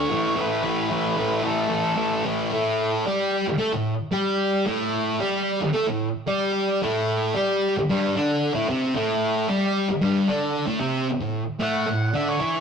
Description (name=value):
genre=rock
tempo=112 BPM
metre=4/4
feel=straight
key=unclear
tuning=A4 = 439 Hz
part: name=octave-fuzz lead guitar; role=melody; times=0.0-2.2, 11.6-12.6 s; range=A4 to F#5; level=-27 LUFS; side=left 1 dB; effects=distortion
part: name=thick fuzz guitar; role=riff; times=0.0-12.6 s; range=G2 to A4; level=-21 LUFS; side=equal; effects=distortion
room=moderate stone room reverb, RT60 1.0 s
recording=rough rehearsal-room recording, tube saturation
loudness=-21 LUFS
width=side -6 dB against mid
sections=0.0-2.5 A section; 2.5-11.1 B section; 11.1-12.6 C section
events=none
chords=0.1 A5; 2.5 Gsus24; 11.1 A5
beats=| 0.37 0.90 1.44 1.98 | 2.51 3.05 3.59 4.12 | 4.66 5.20 5.73 6.27 | 6.80 7.34 7.87 8.41 | 8.94 9.48 10.01 10.55 | 11.09 11.62 12.16